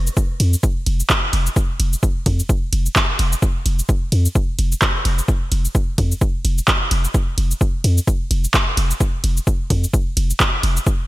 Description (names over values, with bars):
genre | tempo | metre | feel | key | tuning
minimal techno | 129 BPM | 4/4 | swing 57% on 16ths | unclear | A4 = 440 Hz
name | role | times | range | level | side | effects
punchy sub bass | bass | 0.0-10.8 s | F1 to F2 | -17 LUFS | equal | sidechain pumping
punchy analog drum machine | drums | 0.1-11.0 s | cabasa, handclaps, hi-hat, ride cymbal | -22 LUFS | equal | gated reverb
electronic kick drum | drums | 0.2-11.0 s | none | -18 LUFS | equal | none
room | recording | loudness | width
digital ambience | bright 1980s-style digital production | -16 LUFS | side -18 dB against mid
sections
0.0-11.1 A section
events
none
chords
none